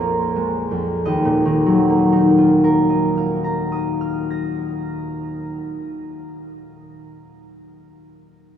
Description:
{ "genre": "classical, solo harp piece", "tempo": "45 BPM", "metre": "3/4", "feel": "rubato", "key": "Eb minor", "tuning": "A4 = 439 Hz", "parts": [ { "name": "concert harp", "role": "solo", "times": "0.0-6.5 s", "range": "Bb1 to Bb6", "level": "-17 LUFS", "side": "equal", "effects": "none" } ], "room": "wet huge ambient reverb, RT60 7.9 s", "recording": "in a vast, echoing space", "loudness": "-16 LUFS", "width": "side -9 dB against mid", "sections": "0.0-1.0 A section; 1.0-5.0 B section", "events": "slowing down 0.0-1.0", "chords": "0.0 Bb7sus4; 1.0 Ebmadd9", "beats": "| 1.04 2.37 3.71" }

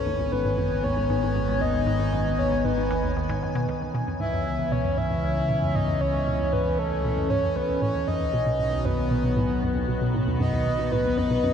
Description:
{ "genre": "ambient, sequencer-driven space music", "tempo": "116 BPM", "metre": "4/4", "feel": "straight", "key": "C# minor", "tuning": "A4 = 440 Hz", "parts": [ { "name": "breathy flute-like synth lead", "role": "melody", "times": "0.0-11.5 s", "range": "A4 to E5", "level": "-27 LUFS", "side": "equal", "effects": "wide subtle chorus, ping-pong delay" }, { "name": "evolving wavetable pad", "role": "sustained chords", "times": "0.0-11.5 s", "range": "D#3 to G#5", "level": "-28 LUFS", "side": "left 2 dB", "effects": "chorus, built-in reverb, phaser" }, { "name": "hollow square pluck", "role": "riff", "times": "0.0-11.5 s", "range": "C#2 to B2", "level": "-29 LUFS", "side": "equal", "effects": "chorus, ping-pong delay" }, { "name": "fat analog bass", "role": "bass", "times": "0.0-11.5 s", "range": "G#1 to C#2", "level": "-29 LUFS", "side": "equal", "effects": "none" } ], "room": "wet huge ambient reverb, RT60 8.4 s", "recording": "dark, warm production", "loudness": "-22 LUFS", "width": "side -8 dB against mid", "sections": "0.0-3.7 A section; 3.7-11.5 A section", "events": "filter sweep on synth arpeggio sound 0.0-3.7, 3.7-11.5", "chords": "0.0 G#m; 3.7 C#m; 7.8 B", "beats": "0.06 0.58 1.09 | 1.61 2.13 2.65 3.16 | 3.68 4.20 4.71 5.23 | 5.75 6.27 6.78 7.30 | 7.82 8.34 8.85 9.37 | 9.89 10.40 10.92 11.44" }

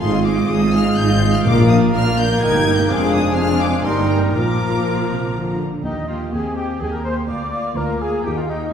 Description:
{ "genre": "quick classical-period movement for symphony orchestra", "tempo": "125 BPM", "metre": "3/4", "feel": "straight", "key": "Eb major", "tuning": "A4 = 440 Hz", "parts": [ { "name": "rich chamber violin section", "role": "melody", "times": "0.0-8.7 s", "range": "Eb5 to Ab6", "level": "-27 LUFS", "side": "left 2 dB", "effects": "none" }, { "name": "mellow clarinet", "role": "second line", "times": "0.0-5.6 s", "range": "D4 to F4", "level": "-26 LUFS", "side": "right 2 dB", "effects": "none" }, { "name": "silver concert flute", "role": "second line", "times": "0.0-8.7 s", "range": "Eb5 to D6", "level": "-30 LUFS", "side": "left 2 dB", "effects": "none" }, { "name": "warm chamber violin section", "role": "second line", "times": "0.0-8.7 s", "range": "Eb4 to Bb5", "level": "-28 LUFS", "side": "left 3 dB", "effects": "none" }, { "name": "warm cor anglais", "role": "second line", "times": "0.0-8.6 s", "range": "Eb4 to Eb5", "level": "-28 LUFS", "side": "equal", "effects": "none" }, { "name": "clear symphonic viola section", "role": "accompaniment", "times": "0.0-8.7 s", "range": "F3 to G4", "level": "-26 LUFS", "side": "right 2 dB", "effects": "none" }, { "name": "mellow bassoon", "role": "accompaniment", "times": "0.0-5.6 s", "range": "F3 to Bb3", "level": "-25 LUFS", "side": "right 4 dB", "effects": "none" }, { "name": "dark French horn section", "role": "sustained chords", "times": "0.0-8.7 s", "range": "Ab3 to F4", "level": "-26 LUFS", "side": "left 3 dB", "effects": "none" }, { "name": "dark chamber cello section", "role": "bass", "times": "0.0-8.6 s", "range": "D2 to D3", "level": "-22 LUFS", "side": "right 2 dB", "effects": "none" }, { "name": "warm chamber double bass section", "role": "bass", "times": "0.0-8.6 s", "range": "F1 to Eb2", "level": "-22 LUFS", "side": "equal", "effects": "none" }, { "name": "timpani", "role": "percussion", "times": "1.5-2.1 s", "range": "Bb2", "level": "-22 LUFS", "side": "left 3 dB", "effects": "none" }, { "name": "mellow trumpet section", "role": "stabs", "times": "5.8-8.7 s", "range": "Eb4 to D5", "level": "-26 LUFS", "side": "left 1 dB", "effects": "none" } ], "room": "wet scoring stage reverb, RT60 1.8 s", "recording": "heard from further back in the room", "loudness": "-16 LUFS", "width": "side -8 dB against mid", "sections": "0.0-5.8 A section; 5.8-8.7 B section", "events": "none", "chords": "0.0 Fm7/Ab; 1.5 Bb; 2.4 Eb/G; 2.9 Ddim/F; 3.9 Eb/G; 4.3 Bb; 5.8 Eb; 7.3 Bb/D; 8.2 Eb", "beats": "| 0.02 0.49 0.97 | 1.46 1.94 2.41 | 2.88 3.37 3.85 | 4.35 4.84 5.34 | 5.83 6.32 6.80 | 7.28 7.77 8.24 | 8.72" }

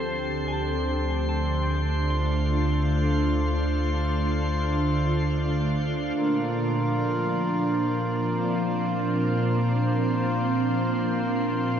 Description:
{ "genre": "ambient", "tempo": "74 BPM", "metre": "4/4", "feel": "straight", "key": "Bb major", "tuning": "A4 = 440 Hz", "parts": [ { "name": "soft additive organ-like pad", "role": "sustained chords", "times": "0.0-11.8 s", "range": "Bb2 to A4", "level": "-25 LUFS", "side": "right 1 dB", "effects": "ensemble chorus, built-in reverb" }, { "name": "warm sub bass", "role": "bass", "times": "0.0-6.1 s", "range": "D2", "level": "-27 LUFS", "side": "equal", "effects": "none" }, { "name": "drifting glass-harmonics texture", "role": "texture", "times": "0.0-11.8 s", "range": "C5 to C6", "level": "-33 LUFS", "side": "left 1 dB", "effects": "chorus, built-in reverb" }, { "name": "clean electric guitar", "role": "arpeggios", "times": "0.5-10.4 s", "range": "Bb3 to C6", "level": "-44 LUFS", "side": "left 1 dB", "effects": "none" }, { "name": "pedal harmonium", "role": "drone", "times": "6.2-11.8 s", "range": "Bb3 to F4", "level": "-29 LUFS", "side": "equal", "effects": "none" } ], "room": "wet cathedral reverb, RT60 6.4 s", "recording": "nothing above 7.6 kHz", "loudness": "-23 LUFS", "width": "side -8 dB against mid", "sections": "0.0-6.2 A section; 6.2-11.8 B section", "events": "none", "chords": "0.0 Dm; 6.2 Bb", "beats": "0.49 1.30 2.11 | 2.92 3.73 4.54 5.35 | 6.16 6.97 7.79 8.60 | 9.41 10.22 11.03" }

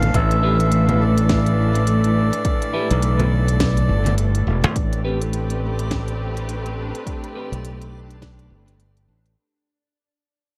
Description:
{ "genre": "ambient dub", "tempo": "104 BPM", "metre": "4/4", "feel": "swing 59% on 16ths", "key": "A minor", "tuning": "A4 = 440 Hz", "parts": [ { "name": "melodica", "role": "melody", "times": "0.0-4.1 s", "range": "D5 to F5", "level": "-28 LUFS", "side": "equal", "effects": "dub echo" }, { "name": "muted studio string section", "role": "sustained chords", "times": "0.0-9.4 s", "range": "A2 to B4", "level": "-28 LUFS", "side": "equal", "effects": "none" }, { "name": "modern bright fingered electric bass", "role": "bass", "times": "0.0-9.3 s", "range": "E1 to B1", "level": "-22 LUFS", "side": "equal", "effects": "none" }, { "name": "organic electronic drum kit", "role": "drums", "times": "0.0-9.4 s", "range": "congas, hi-hat, snare drum", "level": "-30 LUFS", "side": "equal", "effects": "small room ambience, dub echo" }, { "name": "electronic kick drum", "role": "drums", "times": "0.1-8.4 s", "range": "none", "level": "-26 LUFS", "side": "equal", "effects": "overdrive, small room ambience" }, { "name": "clean electric guitar", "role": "stabs", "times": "0.4-7.5 s", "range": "C4 to B4", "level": "-33 LUFS", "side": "equal", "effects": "low-pass filter, dub echo" }, { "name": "backwards swelling texture", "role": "texture", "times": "5.5-9.4 s", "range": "D4 to D5", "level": "-44 LUFS", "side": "equal", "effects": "built-in reverb" } ], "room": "light reverb", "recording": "vinyl crackle", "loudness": "-19 LUFS", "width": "mono", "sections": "0.0-4.8 A section; 4.8-9.4 B section", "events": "fade-out 4.8-9.4", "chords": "0.0 G6; 4.8 Am9", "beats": "| 0.14 0.72 1.30 1.87 | 2.45 3.03 3.60 4.18 | 4.76 5.33 5.91 6.49 | 7.07 7.64 8.22 8.80" }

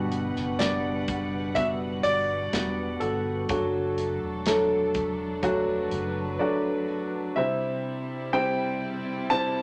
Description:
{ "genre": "pop ballad", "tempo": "62 BPM", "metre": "4/4", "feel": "straight", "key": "G major", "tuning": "A4 = 439 Hz", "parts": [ { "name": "dark upright piano", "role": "accompaniment", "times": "0.0-9.6 s", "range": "B2 to C5", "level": "-30 LUFS", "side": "equal", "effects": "none" }, { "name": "warm studio string section", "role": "sustained chords", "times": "0.0-9.6 s", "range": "C3 to F#5", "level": "-38 LUFS", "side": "equal", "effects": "none" }, { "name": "fingerpicked steel-string acoustic guitar", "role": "arpeggios", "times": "0.0-7.5 s", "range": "F#3 to G4", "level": "-39 LUFS", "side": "equal", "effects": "none" }, { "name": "mellow fretless electric bass", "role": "bass", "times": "0.0-6.4 s", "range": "E1 to G1", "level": "-39 LUFS", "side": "equal", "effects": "none" }, { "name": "modern studio drum kit", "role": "drums", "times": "0.1-6.1 s", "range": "hi-hat, kick drum, snare drum", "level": "-34 LUFS", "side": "equal", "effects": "none" }, { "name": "warm concert grand piano", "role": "melody", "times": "0.6-9.6 s", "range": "A4 to A5", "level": "-32 LUFS", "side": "equal", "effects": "none" } ], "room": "moderate studio reverb, RT60 0.8 s", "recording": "none", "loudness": "-27 LUFS", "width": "mono", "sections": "0.0-7.4 A section; 7.4-9.6 B section", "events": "none", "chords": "0.0 Gmaj7; 3.5 D; 7.4 C", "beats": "0.59 1.56 2.53 | 3.50 4.46 5.43 6.40 | 7.37 8.34 9.30" }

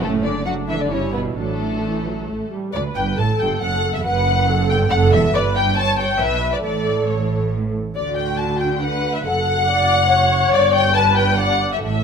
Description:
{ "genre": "quick classical-period movement for string orchestra", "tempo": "138 BPM", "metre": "3/4", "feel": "rubato", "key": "D major", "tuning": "A4 = 437 Hz", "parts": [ { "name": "muted studio violin section", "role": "melody", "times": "0.0-12.0 s", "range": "A4 to A5", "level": "-22 LUFS", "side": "left 8 dB", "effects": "none" }, { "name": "muted studio violin section", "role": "second line", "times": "0.0-12.0 s", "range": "A3 to A5", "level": "-23 LUFS", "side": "equal", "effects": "none" }, { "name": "muted symphonic viola section", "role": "accompaniment", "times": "0.0-12.0 s", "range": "E3 to D5", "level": "-23 LUFS", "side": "right 1 dB", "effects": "none" }, { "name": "muted studio cello section", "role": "bass", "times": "0.0-12.0 s", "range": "D2 to F#3", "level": "-25 LUFS", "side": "right 4 dB", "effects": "none" }, { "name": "muted studio double bass section", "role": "bass", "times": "0.0-12.0 s", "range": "E1 to D2", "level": "-23 LUFS", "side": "right 3 dB", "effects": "none" } ], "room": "light reverb", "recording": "close, detailed microphones", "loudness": "-16 LUFS", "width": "side -6 dB against mid", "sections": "0.0-2.8 A section; 2.8-12.0 B section", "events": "none", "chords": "0.0 D/F#; 0.9 G; 1.4 D/A; 2.3 Gsus2/A; 2.8 D; 4.1 Gmaj13; 5.3 G; 6.6 A; 8.0 D; 9.3 D/F#; 10.5 Gmaj9", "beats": "| 0.03 0.46 0.91 | 1.37 1.83 2.29 | 2.75 3.19 3.62 | 4.05 4.49 4.92 | 5.34 5.77 6.20 | 6.64 7.08 7.51 | 7.96 8.39 8.82 | 9.26 9.69 10.11 | 10.53 10.96 11.39 | 11.84" }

